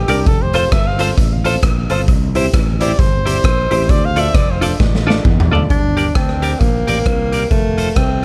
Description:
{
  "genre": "ska",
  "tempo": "133 BPM",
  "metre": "4/4",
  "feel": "swing 60% on 8ths",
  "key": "unclear",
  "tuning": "A4 = 440 Hz",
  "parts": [
    { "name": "warm trumpet", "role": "melody", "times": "0.0-4.7 s", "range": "G4 to F5", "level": "-24 LUFS", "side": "equal", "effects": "tape echo" },
    { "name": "fretless electric bass", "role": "bass", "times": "0.0-8.2 s", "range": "F1 to E2", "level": "-21 LUFS", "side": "equal", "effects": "none" },
    { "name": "clean electric guitar", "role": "accompaniment", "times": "0.1-8.2 s", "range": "E4 to D5", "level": "-22 LUFS", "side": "equal", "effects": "tremolo" },
    { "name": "warm upright piano", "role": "stabs", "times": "0.1-5.6 s", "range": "C4 to D5", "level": "-24 LUFS", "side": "equal", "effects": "none" },
    { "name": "raw garage drum kit", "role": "drums", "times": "0.1-8.1 s", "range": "hi-hat, kick drum, rim click, snare drum, toms", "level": "-18 LUFS", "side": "equal", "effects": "none" },
    { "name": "warm tenor saxophone", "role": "melody", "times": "5.7-8.2 s", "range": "A3 to D4", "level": "-21 LUFS", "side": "equal", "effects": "tape echo" }
  ],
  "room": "light reverb",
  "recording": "none",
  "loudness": "-15 LUFS",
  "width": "mono",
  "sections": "0.0-5.7 A section; 5.7-8.2 B section",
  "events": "trumpet solo 0.0-5.7; drum fill 4.8-5.7",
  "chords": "0.3 F; 2.1 C; 3.9 Dm; 5.7 Gm; 7.5 F"
}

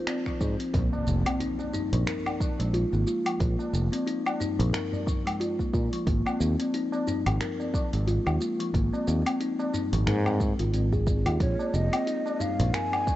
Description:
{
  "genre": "organic downtempo",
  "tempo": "90 BPM",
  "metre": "4/4",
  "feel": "swing 57% on 16ths",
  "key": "Bb minor",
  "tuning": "A4 = 440 Hz",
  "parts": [
    { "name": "breathy mellow ney", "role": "melody", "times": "0.0-0.1, 11.4-13.2 s", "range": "Db5 to Ab5", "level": "-32 LUFS", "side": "right 1 dB", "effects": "digital delay" },
    { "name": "buzzing kalimba", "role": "arpeggios", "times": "0.1-13.2 s", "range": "F3 to Bb4", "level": "-29 LUFS", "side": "left 1 dB", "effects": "digital delay" },
    { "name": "deep house drum kit", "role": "drums", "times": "0.1-13.2 s", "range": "finger snaps, hi-hat, shaker, woodblock", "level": "-34 LUFS", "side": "left 1 dB", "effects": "none" },
    { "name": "tabla", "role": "percussion", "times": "0.1-13.2 s", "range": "none", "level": "-37 LUFS", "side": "right 1 dB", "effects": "none" },
    { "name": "electronic kick drum", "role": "drums", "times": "0.3-13.2 s", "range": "none", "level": "-28 LUFS", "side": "equal", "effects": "none" },
    { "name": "fretless electric bass", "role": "bass", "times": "0.4-12.7 s", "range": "F1 to Bb2", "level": "-26 LUFS", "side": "equal", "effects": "tube saturation, sidechain pumping" },
    { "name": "impact", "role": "sound effects", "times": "0.7-3.4 s", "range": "none", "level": "-34 LUFS", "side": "equal", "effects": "none" }
  ],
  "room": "light reverb",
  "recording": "worn, warbling old tape, cassette tape, warbly pitch drift, nothing above 8.0 kHz",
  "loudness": "-24 LUFS",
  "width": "side -14 dB against mid",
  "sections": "0.7-13.2 A section",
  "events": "impact 0.7-3.4",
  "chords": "0.0 Ab; 0.7 Bbm; 6.1 Ab; 11.4 Bbm7"
}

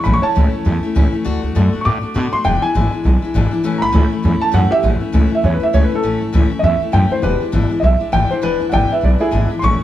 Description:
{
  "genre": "rockabilly",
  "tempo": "201 BPM",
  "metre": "4/4",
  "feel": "swing 60% on 8ths",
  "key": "A major",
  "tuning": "A4 = 440 Hz",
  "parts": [
    { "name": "dark upright piano", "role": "melody", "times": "0.0-9.8 s", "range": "E4 to D6", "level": "-18 LUFS", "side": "right 1 dB", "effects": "none" },
    { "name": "picked steel-string acoustic guitar", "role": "accompaniment", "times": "0.0-9.8 s", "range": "E2 to F#4", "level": "-20 LUFS", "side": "left 4 dB", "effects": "none" },
    { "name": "upright bass", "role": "bass", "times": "0.1-9.8 s", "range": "E1 to B2", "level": "-16 LUFS", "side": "equal", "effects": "none" }
  ],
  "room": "moderate stone room reverb, RT60 1.0 s",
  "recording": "band playing live in one room",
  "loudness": "-13 LUFS",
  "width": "side -13 dB against mid",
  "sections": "0.0-4.8 A section; 4.8-9.8 B section",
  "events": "upright piano solo 0.0-4.8",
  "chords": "0.1 A; 1.3 D; 2.5 E7; 3.6 A; 7.2 E7"
}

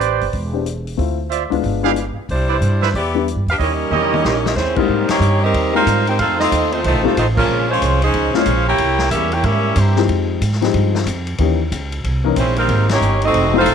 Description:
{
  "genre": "jazz, big band swing",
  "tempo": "185 BPM",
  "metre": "4/4",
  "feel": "swing 63% on 8ths",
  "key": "Ab major from 4.9 s",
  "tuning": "A4 = 441 Hz",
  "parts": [
    { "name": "clear trumpet section", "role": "stabs", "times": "0.0-4.4 s", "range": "E4 to F5", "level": "-21 LUFS", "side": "right 12 dB", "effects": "slapback echo" },
    { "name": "upright bass", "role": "bass", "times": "0.0-13.7 s", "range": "E1 to Ab2", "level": "-19 LUFS", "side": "right 1 dB", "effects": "none" },
    { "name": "vintage drum kit", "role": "drums", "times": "0.0-13.7 s", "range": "crash cymbal, hi-hat, kick drum, ride cymbal, snare drum, toms", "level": "-26 LUFS", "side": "left 3 dB", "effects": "none" },
    { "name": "warm baby grand piano", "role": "accompaniment", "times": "0.5-13.7 s", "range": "Ab2 to Bb4", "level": "-20 LUFS", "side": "left 12 dB", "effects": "none" },
    { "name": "bright saxophone section", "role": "melody", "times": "2.3-10.0, 12.4-13.7 s", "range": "F3 to G5", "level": "-18 LUFS", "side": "left 2 dB", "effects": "none" },
    { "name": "brilliant trombone section", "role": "second line", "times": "3.6-10.0, 12.4-13.7 s", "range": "C3 to G4", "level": "-22 LUFS", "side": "right 12 dB", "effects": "none" }
  ],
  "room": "light reverb",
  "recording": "1960s-style stereo with parts hard left and right",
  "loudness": "-14 LUFS",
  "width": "side -7 dB against mid",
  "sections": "0.0-4.9 A section; 4.9-13.7 B section",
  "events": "drum fill 3.9-4.6; band accent 5.0, 7.3, 12.8",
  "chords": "0.0 Am11; 1.0 Dm9; 1.6 G7b9; 2.3 Cmaj9; 3.6 Eb7b9; 4.9 Abmaj9; 6.2 F7; 7.5 Bbm9; 8.8 C7b9; 10.1 Fm9; 11.4 Eb7b9; 12.7 Abmaj9"
}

